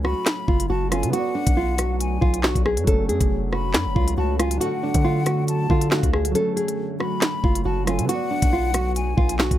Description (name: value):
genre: hip hop, drill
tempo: 138 BPM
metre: 4/4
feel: half-time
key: F# harmonic minor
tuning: A4 = 439 Hz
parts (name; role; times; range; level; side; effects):
- nylon-string guitar; melody; 0.0-9.6 s; D4 to A4; -25 LUFS; right 1 dB; low-pass filter
- breathy mellow silver concert flute; second line; 0.0-9.4 s; F#5 to B5; -30 LUFS; left 5 dB; tape echo
- felt-muted upright piano; accompaniment; 0.0-9.6 s; D3 to D5; -32 LUFS; right 5 dB; low-pass filter
- deep dark ambient pad; sustained chords; 0.0-9.6 s; D3 to A4; -31 LUFS; right 1 dB; chorus, built-in reverb, phaser
- long sustained 808-style bass; bass; 0.0-9.6 s; E#1 to D3; -24 LUFS; equal; none
- drill drum kit; drums; 0.0-9.6 s; handclaps, hi-hat, kick drum, rim click, snare drum; -21 LUFS; equal; none
room: little or no reverb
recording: none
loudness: -19 LUFS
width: side -12 dB against mid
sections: 0.0-9.6 A section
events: break 6.4-7.2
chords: 0.0 F#m; 1.1 Bm; 2.9 F#m; 4.6 D; 6.4 F#m; 8.1 Bm